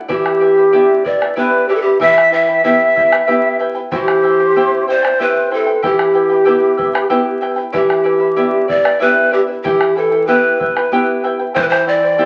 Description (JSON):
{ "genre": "andean folk, Andean ensemble", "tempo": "94 BPM", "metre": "3/4", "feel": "straight", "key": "E minor", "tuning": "A4 = 440 Hz", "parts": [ { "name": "charango", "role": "accompaniment", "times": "0.0-12.3 s", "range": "E4 to G5", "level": "-22 LUFS", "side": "equal", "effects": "none" }, { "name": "breathy large pan pipes", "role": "melody", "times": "0.1-12.3 s", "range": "G4 to E5", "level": "-15 LUFS", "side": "equal", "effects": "none" }, { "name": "breathy mellow large quena", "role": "second line", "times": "0.1-7.4 s", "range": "G4 to E5", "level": "-24 LUFS", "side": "equal", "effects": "none" }, { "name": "nylon-string guitar", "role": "accompaniment", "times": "0.1-12.3 s", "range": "E3 to G4", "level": "-24 LUFS", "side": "equal", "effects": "none" }, { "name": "bombo", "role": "percussion", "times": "0.1-12.0 s", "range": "none", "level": "-26 LUFS", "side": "equal", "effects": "none" } ], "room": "wet large studio reverb, RT60 1.2 s", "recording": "very old 78 rpm record, vinyl crackle", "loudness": "-14 LUFS", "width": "mono", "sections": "0.0-7.7 A section; 7.7-12.3 A section", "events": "none", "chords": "0.1 G/E; 2.0 Em; 3.9 C/E; 5.8 Em; 7.7 G/E; 9.6 Em; 11.6 C/E" }